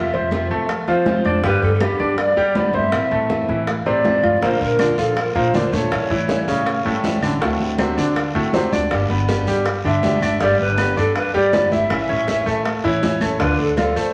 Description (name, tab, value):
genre	latin, Cuban son and guajira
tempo	160 BPM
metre	4/4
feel	straight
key	unclear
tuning	A4 = 440 Hz
part	large pan pipes	melody	0.0-6.9, 9.9-14.1 s	G4 to E5	-23 LUFS	equal	none
part	nylon-string guitar	accompaniment	0.0-14.1 s	B2 to G4	-29 LUFS	equal	none
part	bright grand piano	arpeggios	0.0-14.1 s	A2 to E5	-24 LUFS	equal	none
part	upright bass	bass	0.0-14.1 s	G1 to G3	-28 LUFS	equal	none
part	bongos	percussion	0.1-14.1 s	none	-30 LUFS	equal	none
part	congas	percussion	0.1-14.1 s	none	-30 LUFS	equal	none
part	claves	percussion	0.7-14.0 s	none	-36 LUFS	equal	none
part	guiro	percussion	4.4-14.1 s	none	-38 LUFS	equal	none
room	wet large studio reverb, RT60 1.5 s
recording	vinyl crackle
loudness	-19 LUFS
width	mono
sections	0.0-14.1 A section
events	none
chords	0.0 F; 1.4 G; 2.9 Am; 4.4 Bb; 5.9 A7; 7.4 D7; 8.9 G; 11.9 A; 13.4 Dm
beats	0.32 0.69 1.07 | 1.44 1.81 2.18 2.56 | 2.93 3.30 3.68 4.05 | 4.42 4.79 5.17 5.54 | 5.92 6.29 6.66 7.04 | 7.41 7.79 8.16 8.54 | 8.91 9.28 9.66 10.03 | 10.41 10.78 11.16 11.53 | 11.90 12.28 12.65 13.03 | 13.40 13.78